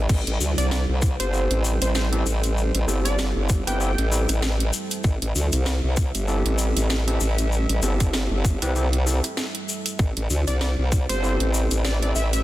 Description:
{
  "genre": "glitch hop",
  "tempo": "97 BPM",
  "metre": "4/4",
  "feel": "swing 57% on 16ths",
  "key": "A minor",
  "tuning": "A4 = 435 Hz",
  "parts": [
    { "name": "dark analog pad", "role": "sustained chords", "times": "0.0-12.4 s", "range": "G3 to E5", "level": "-34 LUFS", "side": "right 3 dB", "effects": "chorus, vintage 12-bit sampler grit, sidechain pumping" },
    { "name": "formant-sweep wobble bass", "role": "bass", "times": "0.0-12.4 s", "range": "G1 to D2", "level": "-22 LUFS", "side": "equal", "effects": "chorus, tube saturation" },
    { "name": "drum and bass drum kit", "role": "drums", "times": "0.1-12.4 s", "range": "crash cymbal, hi-hat, rim click, snare drum", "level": "-29 LUFS", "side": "right 1 dB", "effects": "overdrive" },
    { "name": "electronic kick drum", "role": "drums", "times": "0.1-11.1 s", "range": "none", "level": "-21 LUFS", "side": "equal", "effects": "overdrive" },
    { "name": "egg shaker", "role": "percussion", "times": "0.1-12.4 s", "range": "none", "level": "-32 LUFS", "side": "left 5 dB", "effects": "none" },
    { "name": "plucky unison lead", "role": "melody", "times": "0.6-4.5, 10.5-12.4 s", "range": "C5 to G5", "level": "-30 LUFS", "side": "equal", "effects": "dub echo" },
    { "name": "overdriven tine electric piano", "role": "stabs", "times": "1.3-12.1 s", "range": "C4 to B4", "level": "-30 LUFS", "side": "right 1 dB", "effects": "sidechain pumping, dub echo" }
  ],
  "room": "little or no reverb",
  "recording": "dense, heavily limited modern master",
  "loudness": "-20 LUFS",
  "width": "side -15 dB against mid",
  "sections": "0.0-12.4 A section",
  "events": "none",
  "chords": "0.0 Am7",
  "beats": "| 0.10 0.71 1.33 1.95 | 2.57 3.19 3.81 4.42 | 5.04 5.66 6.28 6.90 | 7.52 8.14 8.76 9.37 | 9.99 10.61 11.23 11.85"
}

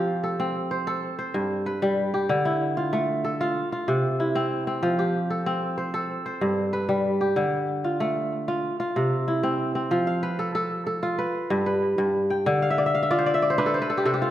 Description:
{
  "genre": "west african traditional",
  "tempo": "94 BPM",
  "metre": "4/4",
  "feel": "straight",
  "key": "F lydian",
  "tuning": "A4 = 440 Hz",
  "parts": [
    { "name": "kora", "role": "solo", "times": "0.0-14.3 s", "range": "G2 to G5", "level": "-22 LUFS", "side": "equal", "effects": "tape echo" }
  ],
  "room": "wet recital hall reverb, RT60 1.3 s",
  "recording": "none",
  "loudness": "-22 LUFS",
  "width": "side -12 dB against mid",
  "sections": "0.0-9.9 A section; 9.9-14.3 B section",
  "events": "kora fill 12.6-14.3",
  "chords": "0.0 F; 1.0 G; 2.3 Dm; 3.6 C; 4.8 F; 6.1 G; 7.4 Dm; 8.6 C; 9.9 F; 11.2 G; 12.5 Dm; 13.7 N.C.",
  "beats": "0.39 1.02 1.66 | 2.29 2.92 3.56 4.19 | 4.83 5.46 6.10 6.73 | 7.37 8.00 8.64 9.28 | 9.91 10.55 11.19 11.82 | 12.46 13.10 13.73"
}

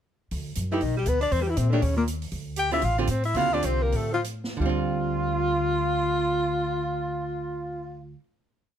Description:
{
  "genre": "jazz, small-group swing and bop",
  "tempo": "168-241 BPM",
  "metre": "4/4",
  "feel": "swing 58% on 8ths",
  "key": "D minor",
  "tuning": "A4 = 440 Hz",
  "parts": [
    { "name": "upright bass", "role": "bass", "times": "0.3-8.1 s", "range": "A1 to Bb2", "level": "-28 LUFS", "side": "equal", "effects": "none" },
    { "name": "open jazz drum kit", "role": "drums", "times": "0.3-4.5 s", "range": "hi-hat, snare drum", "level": "-40 LUFS", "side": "right 4 dB", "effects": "none" },
    { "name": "mellow alto saxophone", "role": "melody", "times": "0.7-8.1 s", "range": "Bb3 to G5", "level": "-27 LUFS", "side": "left 3 dB", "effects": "none" },
    { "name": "warm tenor saxophone", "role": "second line", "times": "0.7-8.1 s", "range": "Bb2 to G4", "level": "-33 LUFS", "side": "right 6 dB", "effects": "none" },
    { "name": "archtop guitar, miked and amplified", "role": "accompaniment", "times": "0.7-8.3 s", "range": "C#3 to G4", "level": "-31 LUFS", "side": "right 7 dB", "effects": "none" }
  ],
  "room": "light reverb",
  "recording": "close, detailed microphones",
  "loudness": "-23 LUFS",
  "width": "side -9 dB against mid",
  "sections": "0.3-4.6 A section; 4.6-7.4 final chord",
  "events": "slowing down 2.3-4.6",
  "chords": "0.3 Dsus4; 0.8 Ebmaj7#5/B; 1.3 Edim; 1.8 Bbmadd11/Eb; 2.3 Dm11; 4.6 Dm7",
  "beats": "| 0.31 0.56 0.81 1.06 | 1.31 1.56 1.81 2.06 | 2.31 2.56 2.82 3.08 | 3.35 3.63 3.93 4.25 | 4.59 4.94 5.30 5.66 | 6.01 6.37 6.73 7.08"
}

